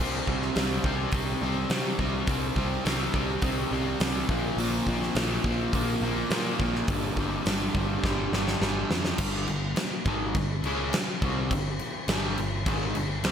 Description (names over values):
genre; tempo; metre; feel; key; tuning
hard rock; 104 BPM; 4/4; straight; G minor; A4 = 440 Hz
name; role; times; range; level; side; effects
crunchy overdriven guitar; riff; 0.0-13.3 s; G2 to C#4; -28 LUFS; equal; wide subtle chorus
modern bright picked electric bass; bass; 0.0-13.3 s; G1 to C3; -32 LUFS; equal; none
huge arena drum kit; drums; 0.3-13.3 s; crash cymbal, hi-hat, kick drum, snare drum; -29 LUFS; equal; gated reverb
room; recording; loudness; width
moderate lush hall reverb, RT60 1.8 s, small room reverb; bright 1980s-style digital production; -25 LUFS; side -8 dB against mid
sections
0.0-9.2 A section; 9.2-13.3 B section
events
drum fill 8.0-9.2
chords
0.0 C5; 4.3 Bb5; 6.9 G5